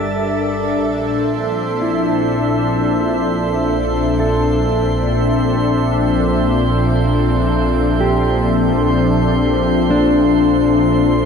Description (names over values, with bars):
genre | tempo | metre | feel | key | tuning
ambient | 63 BPM | 4/4 | straight | unclear | A4 = 440 Hz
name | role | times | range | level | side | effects
warm analog pad | sustained chords | 0.0-11.3 s | Bb2 to E5 | -16 LUFS | left 1 dB | chorus
warm studio double bass section | bass | 0.0-11.3 s | G1 to Bb1 | -22 LUFS | right 1 dB | none
drifting glass-harmonics texture | texture | 0.0-11.3 s | C5 to D6 | -24 LUFS | right 3 dB | chorus, built-in reverb
mellow electric guitar | arpeggios | 1.8-11.3 s | D4 to A4 | -21 LUFS | left 2 dB | diffuse ambient delay
room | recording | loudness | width
wet cathedral reverb, RT60 5.4 s | dark, warm production | -14 LUFS | side -6 dB against mid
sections
0.0-11.3 A section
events
none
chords
0.0 Gmadd9; 0.9 Bbmaj9#11